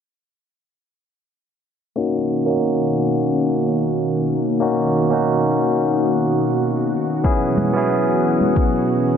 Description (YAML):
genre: sunset chillout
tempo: 91 BPM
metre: 4/4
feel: swing 54% on 16ths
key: B major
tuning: A4 = 440 Hz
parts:
  - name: barky tine electric piano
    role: accompaniment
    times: 2.0-9.2 s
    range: A#3 to G#4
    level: -18 LUFS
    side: moving between left 5 dB and right 3 dB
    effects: auto-pan, low-pass filter, ping-pong delay
  - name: lush unison pad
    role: sustained chords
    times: 2.0-9.2 s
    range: B2 to F#4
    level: -21 LUFS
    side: equal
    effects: chorus
  - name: electronic kick drum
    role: drums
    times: 7.2-8.7 s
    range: none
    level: -18 LUFS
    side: equal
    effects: none
  - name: congas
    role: percussion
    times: 7.6-8.5 s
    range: none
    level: -25 LUFS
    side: right 1 dB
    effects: none
room: moderate lush hall reverb, RT60 1.7 s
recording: low-pass filter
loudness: -16 LUFS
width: side -8 dB against mid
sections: 2.0-9.2 A section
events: filter sweep on tine electric piano 2.0-9.2; filter sweep 2.0-9.2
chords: 2.0 Bmaj9; 7.2 F#7sus4